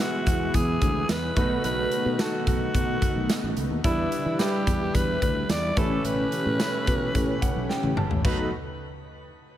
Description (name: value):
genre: 1980s-style pop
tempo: 109 BPM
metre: 4/4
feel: straight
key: unclear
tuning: A4 = 441 Hz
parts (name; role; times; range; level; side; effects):
- breathy alto saxophone; melody; 0.0-8.5 s; E4 to D5; -29 LUFS; equal; shimmer reverb
- clear concert grand piano; accompaniment; 0.0-8.5 s; G3 to A5; -32 LUFS; right 1 dB; shimmer reverb
- ensemble organ-string; sustained chords; 0.0-8.5 s; B2 to E4; -33 LUFS; equal; ensemble chorus, shimmer reverb
- mellow synth brass; stabs; 0.0-8.5 s; D#3 to B4; -34 LUFS; left 1 dB; chorus, shimmer reverb
- sustaining fretless electric bass; bass; 0.3-8.5 s; G1 to E3; -30 LUFS; equal; lush chorus
- big rock drum kit; drums; 0.3-8.4 s; crash cymbal, hi-hat, kick drum, snare drum, tambourine, toms; -27 LUFS; equal; none
room: light reverb, small room reverb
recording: none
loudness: -22 LUFS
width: side -12 dB against mid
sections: 0.0-8.2 A section; 8.2-9.6 B section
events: grand piano fill 7.1-8.2; drum fill 7.7-8.2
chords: 0.0 E; 1.4 B7; 3.8 Em7; 5.8 Aadd9; 8.2 B7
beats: 0.54 1.09 | 1.64 2.19 2.74 3.29 | 3.84 4.39 4.94 5.49 | 6.04 6.59 7.14 7.70 | 8.25